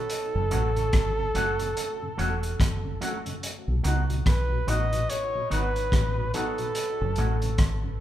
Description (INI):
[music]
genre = roots reggae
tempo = 72 BPM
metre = 4/4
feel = swing 59% on 16ths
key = B mixolydian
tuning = A4 = 440 Hz
[part]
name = warm flugelhorn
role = melody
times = 0.0-8.0 s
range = A4 to D#5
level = -30 LUFS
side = right 2 dB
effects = tape echo
[part]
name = crunchy breakbeat drum kit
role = drums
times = 0.1-7.8 s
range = hi-hat, kick drum, rim click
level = -28 LUFS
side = equal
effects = none
[part]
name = mellow tonewheel organ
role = accompaniment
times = 0.3-7.9 s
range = F#2 to F#4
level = -37 LUFS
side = left 1 dB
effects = chorus vibrato, slow rotary speaker, tape echo
[part]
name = deep dub fingered electric bass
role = bass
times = 0.4-8.0 s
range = E1 to C#2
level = -27 LUFS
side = equal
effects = none
[part]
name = electric guitar with an envelope filter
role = accompaniment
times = 0.5-7.3 s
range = F#3 to F#4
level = -33 LUFS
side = equal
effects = spring reverb
[sound]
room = moderate large studio reverb, RT60 1.1 s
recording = band playing live in one room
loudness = -24 LUFS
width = side -12 dB against mid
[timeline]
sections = 0.0-8.0 A section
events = none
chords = 0.1 F#m; 3.4 B; 6.8 F#m